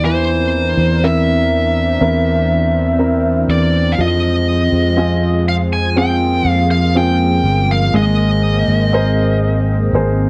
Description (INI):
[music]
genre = pop ballad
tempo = 61 BPM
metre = 4/4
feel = straight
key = unclear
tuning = A4 = 439 Hz
[part]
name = biting lead guitar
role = melody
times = 0.0-10.3 s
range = C5 to Ab5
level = -21 LUFS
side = equal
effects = overdrive, slapback echo
[part]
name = warm baby grand piano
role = accompaniment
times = 0.0-10.3 s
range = E3 to C5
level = -21 LUFS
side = equal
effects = none
[part]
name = lush unison pad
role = sustained chords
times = 0.0-10.3 s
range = E3 to Bb4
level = -24 LUFS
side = equal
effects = chorus
[part]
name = sustaining fretless electric bass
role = bass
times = 0.0-10.3 s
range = G1 to F2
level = -19 LUFS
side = equal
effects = none
[sound]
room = little or no reverb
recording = dry, close 1970s-style studio recording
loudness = -15 LUFS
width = mono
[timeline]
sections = 0.0-10.3 A section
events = none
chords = 0.0 C7/E; 4.0 Fm; 7.9 Abadd9